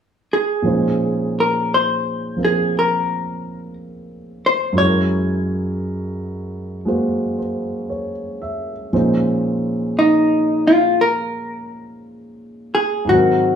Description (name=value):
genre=jazz ballad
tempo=58 BPM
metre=4/4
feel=swing 68% on 8ths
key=Bb minor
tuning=A4 = 440 Hz
part: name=vintage hollow-body jazz guitar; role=melody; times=0.3-13.6 s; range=Eb4 to Db5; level=-16 LUFS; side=left 1 dB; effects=none
part: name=warm grand piano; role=accompaniment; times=0.6-13.6 s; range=Gb2 to Fb5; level=-21 LUFS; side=right 1 dB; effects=none
room=wet studio reverb, RT60 0.8 s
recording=heard from further back in the room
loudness=-16 LUFS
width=side -8 dB against mid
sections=0.6-8.9 A section; 8.9-13.6 B section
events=none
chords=0.0 N.C.; 0.6 Bbm11; 4.8 Gb9; 8.9 Bbm11